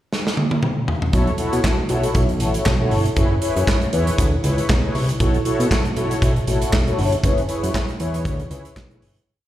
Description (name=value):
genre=early-eighties boogie funk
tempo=118 BPM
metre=4/4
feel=swing 56% on 16ths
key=unclear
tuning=A4 = 440 Hz
part: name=modern studio drum kit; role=drums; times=0.1-9.3 s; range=handclaps, hi-hat, kick drum, snare drum, toms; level=-20 LUFS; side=equal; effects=none
part: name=mellow synth brass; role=accompaniment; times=1.1-9.2 s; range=E4 to C#5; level=-23 LUFS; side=left 1 dB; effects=chorus, phaser, slapback echo
part: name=fat analog bass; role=bass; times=1.1-9.2 s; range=F#1 to B2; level=-20 LUFS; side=equal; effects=none
room=light reverb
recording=live gig heard through the venue's PA, recital hall reverb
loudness=-17 LUFS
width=side -13 dB against mid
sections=0.0-1.1 pickup bar; 1.1-9.3 verse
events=drum fill 0.1-1.1; fade-out 7.2-9.3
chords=0.0 N.C.; 1.1 B9sus4; 3.2 F#9sus4; 5.2 B9sus4; 7.2 F#9sus4